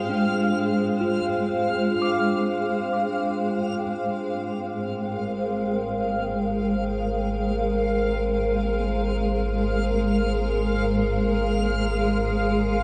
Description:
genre	ambient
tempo	free time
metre	none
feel	none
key	Ab lydian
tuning	A4 = 440 Hz
part	granular cloud pad	sustained chords	0.0-12.8 s	Ab3 to G5	-26 LUFS	equal	built-in reverb
part	mellow tine electric piano	arpeggios	0.0-4.1 s	D4 to D6	-32 LUFS	equal	analog chorus, tape echo
part	backwards swelling texture	texture	0.0-12.8 s	F5 to F6	-36 LUFS	equal	built-in reverb, lush chorus
part	deep rumbling drone	bass	5.9-12.8 s	Ab1	-31 LUFS	equal	built-in reverb
room	wet huge ambient reverb, RT60 8.2 s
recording	dreamy mix soaked in reverb, cassette tape, nothing above 10.6 kHz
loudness	-24 LUFS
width	mono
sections	0.0-3.8 A section; 3.8-12.8 B section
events	fade-in on synth texture 3.8-12.8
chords	0.0 Fmadd9/Ab; 3.8 Ab69

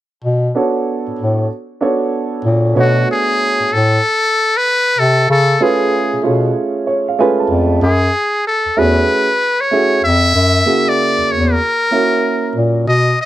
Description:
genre	hip hop, jazz-hop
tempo	95 BPM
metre	4/4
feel	swing 64% on 16ths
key	B dorian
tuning	A4 = 439 Hz
part	breathy bass clarinet	bass	0.2-13.2 s	E2 to C#3	-14 LUFS	left 1 dB	none
part	dark upright piano	accompaniment	0.5-12.8 s	C#3 to A5	-16 LUFS	right 3 dB	plate reverb
part	trumpet with metal mute	melody	2.8-13.3 s	F#4 to E5	-14 LUFS	left 1 dB	plate reverb
room	moderate small room reverb, RT60 0.6 s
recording	none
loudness	-12 LUFS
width	side -14 dB against mid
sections	0.2-2.8 A section; 2.8-13.3 B section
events	upright piano fill 6.6-7.8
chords	0.2 Bm7; 5.3 C#7b13; 7.8 F#m9; 10.4 F#7

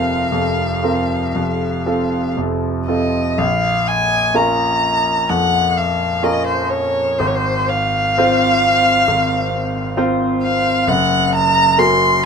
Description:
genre	classical, romantic duo for violin and grand piano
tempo	58-67 BPM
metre	4/4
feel	rubato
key	Bb minor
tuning	A4 = 437 Hz
part	rich violin	melody	0.0-12.3 s	C5 to C6	-16 LUFS	equal	none
part	bright grand piano	accompaniment	0.0-12.3 s	F1 to C5	-18 LUFS	equal	none
room	light reverb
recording	none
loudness	-14 LUFS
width	side -6 dB against mid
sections	0.0-3.4 A section; 3.4-12.3 B section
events	none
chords	0.0 Fsus4; 1.4 F; 3.4 Bbm; 7.2 Fm/Ab; 10.9 Gb

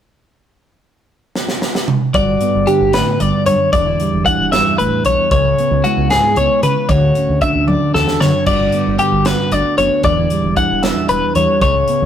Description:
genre	math rock and midwest emo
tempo	76 BPM (dotted quarters)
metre	6/8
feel	straight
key	G lydian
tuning	A4 = 440 Hz
part	crisp fusion drum kit	drums	1.4-12.0 s	crash cymbal, hi-hat, kick drum, snare drum, toms	-20 LUFS	right 1 dB	none
part	mellow electric guitar	accompaniment	2.1-12.1 s	D2 to G#4	-18 LUFS	right 3 dB	none
part	twelve-string electric guitar	arpeggios	2.1-12.1 s	F#4 to F#5	-15 LUFS	left 2 dB	none
part	fingered electric bass	bass	2.1-12.1 s	E1 to D3	-20 LUFS	equal	none
room	moderate stone room reverb, RT60 1.1 s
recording	rough rehearsal-room recording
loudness	-12 LUFS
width	side -9 dB against mid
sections	0.6-2.1 A section; 2.1-12.1 B section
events	drum fill 1.4-2.1, 7.7-8.5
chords	0.6 N.C.; 2.1 Gmaj7; 3.7 Em7; 5.3 C#m7; 6.9 Dmaj7; 8.5 Gmaj7; 10.0 Em7

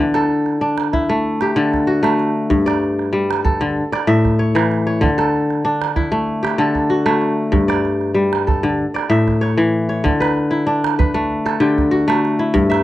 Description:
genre	west african traditional, West African string and xylophone music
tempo	96 BPM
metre	4/4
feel	straight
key	D major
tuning	A4 = 442 Hz
part	kora	arpeggios	0.0-12.8 s	G2 to E5	-15 LUFS	left 1 dB	none
part	calabash	percussion	0.1-12.8 s	none	-22 LUFS	right 4 dB	none
room	small room ambience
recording	dry, close 1970s-style studio recording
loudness	-15 LUFS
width	side -15 dB against mid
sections	0.0-10.0 A section; 10.0-12.8 B section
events	none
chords	0.0 D; 2.5 G5; 3.8 A; 5.0 D; 7.5 G5; 8.8 A; 10.0 D

